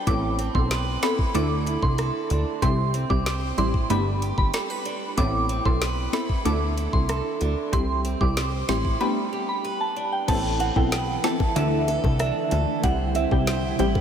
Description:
dancehall; 94 BPM; 4/4; straight; A minor; A4 = 440 Hz
soft synth bell; melody; 0.0-14.0 s; E5 to D6; -28 LUFS; right 1 dB; chorus, diffuse ambient delay
picked steel-string acoustic guitar; arpeggios; 0.0-14.0 s; A2 to C5; -31 LUFS; right 6 dB; diffuse ambient delay
punchy chord stab; accompaniment; 0.1-14.0 s; G3 to A4; -28 LUFS; left 1 dB; chorus
plucky analog bass; bass; 0.1-14.0 s; G1 to D2; -26 LUFS; equal
island pop drum kit; drums; 0.1-14.0 s; crash cymbal, hi-hat, kick drum, rim click, snare drum; -28 LUFS; equal
granular cloud pad; sustained chords; 11.1-14.0 s; E4; -31 LUFS; right 1 dB; built-in reverb, sidechain pumping
bongos; percussion; 10.6-14.0 s; -37 LUFS; left 7 dB
moderate huge ambient reverb, RT60 6.3 s; dreamy mix soaked in reverb; -21 LUFS; side -8 dB against mid
0.0-10.3 A section; 10.3-14.0 B section
break 9.0-10.3
0.1 Amadd9; 1.3 Dsus2; 2.6 C; 3.9 Gadd9; 5.2 Amadd9; 6.5 Dsus2; 7.7 C; 9.0 Gadd9; 10.3 Amadd9; 11.6 Dsus2; 12.8 C

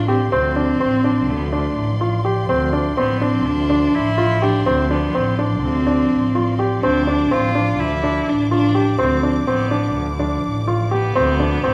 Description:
contemporary instrumental, chamber music in an uneven meter; 249 BPM (eighths); 9/8; straight; D dorian; A4 = 437 Hz
clear cello; melody; 0.0-11.7 s; A3 to F4; -23 LUFS; equal
rich studio string section; sustained chords; 0.0-11.7 s; F3 to D6; -31 LUFS; equal
warm grand piano; arpeggios; 0.0-11.7 s; C4 to G4; -22 LUFS; equal
rich double bass; bass; 0.0-11.7 s; A1 to D2; -24 LUFS; equal
wet recital hall reverb, RT60 1.4 s; -18 LUFS; mono
0.0-11.7 A section
0.0 Dm7

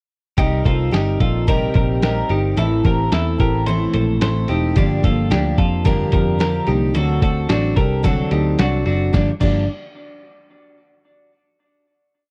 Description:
jangly indie pop; 110 BPM; 4/4; straight; G minor; A4 = 440 Hz
picked steel-string acoustic guitar; accompaniment; 0.4-9.6 s; G2 to Bb4; -24 LUFS; equal
twelve-string electric guitar; arpeggios; 0.4-9.7 s; D4 to C5; -25 LUFS; equal
vintage muted picked electric bass; bass; 0.4-9.7 s; E1 to F2; -22 LUFS; equal
lo-fi sampler-style drum kit; drums; 0.4-9.5 s; crash cymbal, hi-hat, kick drum, snare drum; -22 LUFS; equal
digital ambience; dry, close 1970s-style studio recording; -18 LUFS; mono
0.4-9.1 pre-chorus; 9.1-11.3 final chord
0.4 Cm7; 2.6 Am; 4.8 Gm7; 7.0 D7; 9.1 Gm7

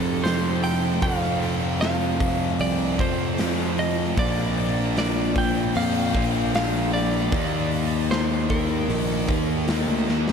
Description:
rock, shoegaze and dream pop; 76 BPM; 4/4; straight; A4 = 440 Hz
clean electric guitar; melody; 0.0-9.6 s; A4 to G5; -28 LUFS; right 1 dB; ping-pong delay
thick fuzz guitar; riff; 0.0-10.3 s; F2 to Eb4; -25 LUFS; equal; distortion, lush chorus
fuzz picked electric bass; bass; 0.0-10.3 s; Bb1 to F2; -27 LUFS; equal; overdrive
huge arena drum kit; drums; 0.2-10.3 s; hi-hat, kick drum, snare drum; -27 LUFS; equal
moderate huge ambient reverb, RT60 7.8 s; dreamy mix soaked in reverb; -20 LUFS; side -6 dB against mid
0.0-10.3 A section
drum fill 10.1
0.0 F5; 4.2 Bb; 7.3 Eb5

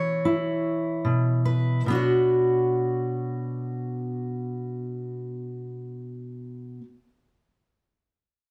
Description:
folk; 47 BPM (dotted quarters); 6/8; straight; B minor; A4 = 441 Hz
fingerpicked steel-string acoustic guitar; accompaniment; 0.0-6.9 s; B2 to C#5; -27 LUFS; equal
wet large studio reverb, RT60 0.9 s; -26 LUFS; mono
0.0-1.9 A section; 1.9-7.0 B section
slowing down 0.0-1.9
0.0 E5; 1.9 Bmadd9

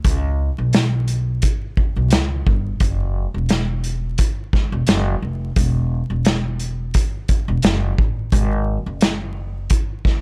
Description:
hip hop, boom-bap hip-hop; 87 BPM; 4/4; swing 55% on 16ths; A4 = 440 Hz
upright bass; bass; 0.0-9.7 s; E1 to C#2; -23 LUFS; equal
vintage drum kit; drums; 0.0-10.2 s; hi-hat, kick drum, snare drum; -21 LUFS; equal
little or no reverb; vinyl crackle; -20 LUFS; mono
0.0-10.2 A section

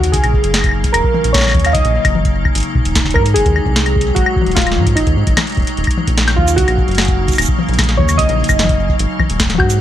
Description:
IDM; 149 BPM; 4/4; straight; Eb dorian; A4 = 441 Hz
warbly lo-fi synth keys; melody; 0.0-9.8 s; Eb4 to F5; -18 LUFS; right 1 dB; chorus, ping-pong delay
icy glass pad; sustained chords; 0.0-9.8 s; C3 to Eb4; -21 LUFS; left 1 dB; chorus, built-in reverb, vintage 12-bit sampler grit
round analog bass; bass; 0.0-9.8 s; Eb1 to Ab2; -17 LUFS; equal; tube saturation
booming analog drum machine; drums; 0.0-9.8 s; cabasa, claves, hi-hat, snare drum, toms; -17 LUFS; left 2 dB; studio reverb
electronic kick drum; drums; 0.1-9.7 s; -17 LUFS; equal; studio reverb
little or no reverb; -11 LUFS; side -11 dB against mid
0.0-9.8 A section
0.0 Ebm7; 2.6 Ab7; 5.8 Ebm7; 9.0 Ab7

